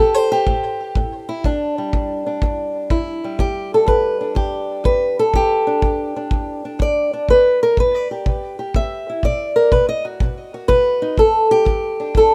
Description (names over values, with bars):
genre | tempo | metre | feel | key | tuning
acoustic country blues, solo or duo | 123 BPM | 4/4 | swing 67% on 8ths | E minor | A4 = 440 Hz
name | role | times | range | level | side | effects
fingerpicked old ladder-braced acoustic guitar | melody | 0.0-12.3 s | E2 to E5 | -19 LUFS | equal | tape echo
kick drum | drums | 0.5-12.3 s | none | -22 LUFS | equal | none
room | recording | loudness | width
light reverb | rough home demo mix | -18 LUFS | mono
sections
0.0-12.3 A section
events
none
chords
0.0 N.C.; 1.4 Em7; 7.3 C; 9.2 B5; 11.2 Em7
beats
0.46 0.95 | 1.44 1.93 2.41 2.90 | 3.39 3.88 4.36 4.85 | 5.34 5.82 6.31 6.80 | 7.28 7.77 8.25 8.74 | 9.23 9.71 10.20 10.68 | 11.17 11.66 12.14